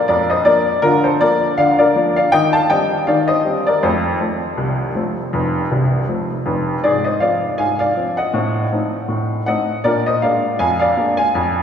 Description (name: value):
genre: ragtime piano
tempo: 80 BPM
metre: 2/4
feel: swing 56% on 16ths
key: unclear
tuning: A4 = 441 Hz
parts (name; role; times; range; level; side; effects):
- clear upright piano; solo; 0.0-11.6 s; C1 to A5; -14 LUFS; left 1 dB; none
room: wet cathedral reverb, RT60 5.2 s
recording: recorded in a church or concert hall, small room ambience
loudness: -14 LUFS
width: side -8 dB against mid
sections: 0.0-11.6 A section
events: none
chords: 0.0 Bb; 0.8 Bb/D; 2.3 Cm/Eb; 3.8 F; 6.8 Fm/Ab; 8.3 Adim7; 9.8 Bb7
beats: 0.08 | 0.83 1.58 | 2.33 3.08 | 3.83 4.58 | 5.34 6.09 | 6.84 7.59 | 8.34 9.09 | 9.84 10.59 | 11.34